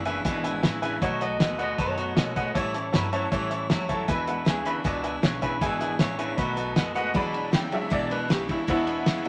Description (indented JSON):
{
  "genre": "rockabilly",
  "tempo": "156 BPM",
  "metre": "4/4",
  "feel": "straight",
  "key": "E mixolydian",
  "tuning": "A4 = 438 Hz",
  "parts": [
    { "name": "electric guitar through a small old amp", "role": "melody", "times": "0.0-6.9 s", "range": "G#4 to D#5", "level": "-34 LUFS", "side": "equal", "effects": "spring reverb" },
    { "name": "picked steel-string acoustic guitar", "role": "accompaniment", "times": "0.0-9.3 s", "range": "E2 to F#4", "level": "-36 LUFS", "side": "equal", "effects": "none" },
    { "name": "twangy electric guitar", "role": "riff", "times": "0.0-9.3 s", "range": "E2 to G#3", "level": "-35 LUFS", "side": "equal", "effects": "harmonic tremolo" },
    { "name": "upright bass", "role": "bass", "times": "0.0-9.2 s", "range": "F#1 to B2", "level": "-40 LUFS", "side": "equal", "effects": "none" },
    { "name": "honky-tonk upright piano", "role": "accompaniment", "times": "0.1-9.3 s", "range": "F#3 to B5", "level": "-32 LUFS", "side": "equal", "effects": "none" },
    { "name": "cloth-damped thuddy drum kit", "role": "drums", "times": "0.1-9.3 s", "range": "hi-hat, kick drum, ride cymbal, snare drum", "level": "-29 LUFS", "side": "equal", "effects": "none" }
  ],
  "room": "moderate studio reverb, RT60 0.6 s",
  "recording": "none",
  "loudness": "-26 LUFS",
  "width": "mono",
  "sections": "0.0-7.1 A section; 7.1-9.3 B section",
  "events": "honky-tonk piano solo 7.1-9.3",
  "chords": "0.0 E7; 1.0 B7; 2.5 A7; 4.1 E7; 6.4 B7; 7.1 E7",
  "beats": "0.25 0.63 | 1.02 1.40 1.78 2.16 | 2.55 2.93 3.31 3.70 | 4.08 4.46 4.85 5.23 | 5.62 6.00 6.38 6.76 | 7.15 7.53 7.92 8.30 | 8.68 9.07"
}